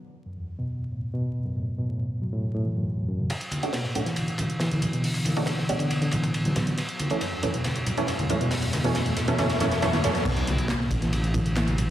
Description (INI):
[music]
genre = breakbeat, breaks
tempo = 138 BPM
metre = 4/4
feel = straight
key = B minor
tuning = A4 = 441 Hz
[part]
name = mellow reed electric piano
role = riff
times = 0.3-11.9 s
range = E2 to B3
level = -27 LUFS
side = equal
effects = fast tremolo, low-pass filter
[part]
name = crunchy breakbeat drum kit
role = drums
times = 3.3-11.9 s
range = crash cymbal, hi-hat, kick drum, ride cymbal, snare drum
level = -31 LUFS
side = equal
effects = high-pass filter on kick, high-pass filter on cymbals, high-pass filter on hats, high-pass filter on snare, high-pass filter on room
[part]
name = punchy analog drum machine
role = drums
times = 3.3-11.9 s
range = handclaps, hi-hat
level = -38 LUFS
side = equal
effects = none
[part]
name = riser and impact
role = sound effects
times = 6.3-11.9 s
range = none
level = -35 LUFS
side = left 1 dB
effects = none
[part]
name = congas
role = percussion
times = 3.5-11.9 s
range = none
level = -32 LUFS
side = right 1 dB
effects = none
[part]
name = orchestra-hit-like synth stab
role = stabs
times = 3.6-10.1 s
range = E3 to F#4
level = -28 LUFS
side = right 1 dB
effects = built-in reverb, dub echo
[part]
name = dark detuned saw bass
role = bass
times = 10.3-11.9 s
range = A1 to B1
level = -28 LUFS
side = equal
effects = tube saturation
[sound]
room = moderate digital room reverb, RT60 1.2 s, studio reverb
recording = vinyl crackle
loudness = -24 LUFS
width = side -12 dB against mid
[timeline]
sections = 0.0-3.3 A section; 3.3-10.3 B section; 10.3-11.9 C section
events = build-up 3.3-10.3; filter sweep on reed electric piano 3.3-10.3; filter sweep on synth stab 3.3-10.3; drum fill 6.8-10.3; drop 10.3-11.9; impact 10.3-11.9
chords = 0.0 F#m7; 3.3 Bm7; 6.8 F#m7; 10.3 Bm7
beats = 0.26 0.69 1.13 | 1.56 2.00 2.43 2.87 | 3.30 3.74 4.17 4.61 | 5.04 5.48 5.91 6.34 | 6.78 7.21 7.65 8.08 | 8.52 8.95 9.39 9.82 | 10.26 10.69 11.13 11.56